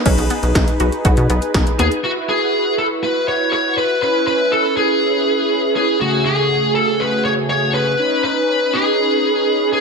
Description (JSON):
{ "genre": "synth-pop", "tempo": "121 BPM", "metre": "4/4", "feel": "straight", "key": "E major", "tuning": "A4 = 440 Hz", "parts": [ { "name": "wide unison pluck", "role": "arpeggios", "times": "0.0-2.0 s", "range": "B3 to F#4", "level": "-24 LUFS", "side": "left 1 dB", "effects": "tape echo" }, { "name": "mellow synth brass", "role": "accompaniment", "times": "0.1-9.8 s", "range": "C#3 to B4", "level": "-20 LUFS", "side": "right 1 dB", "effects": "chorus" }, { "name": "rubbery square bass", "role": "bass", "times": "0.1-1.9 s", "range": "B1 to B2", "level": "-18 LUFS", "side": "equal", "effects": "none" }, { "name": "80s electronic pad drums", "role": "drums", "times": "0.1-2.0 s", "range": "crash cymbal, hi-hat, kick drum, snare drum", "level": "-17 LUFS", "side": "equal", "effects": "none" }, { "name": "biting lead guitar", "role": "melody", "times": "1.8-9.8 s", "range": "F#4 to C#5", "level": "-16 LUFS", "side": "equal", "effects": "overdrive, tape echo" } ], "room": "moderate digital room reverb, RT60 1.2 s", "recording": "lossy compression artefacts", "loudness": "-14 LUFS", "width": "side -4 dB against mid", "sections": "0.1-2.0 A section; 2.0-9.8 B section", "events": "none", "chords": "0.1 B6; 2.0 Esus2; 4.0 C#m7; 6.0 F#madd9/C#; 8.0 Badd9" }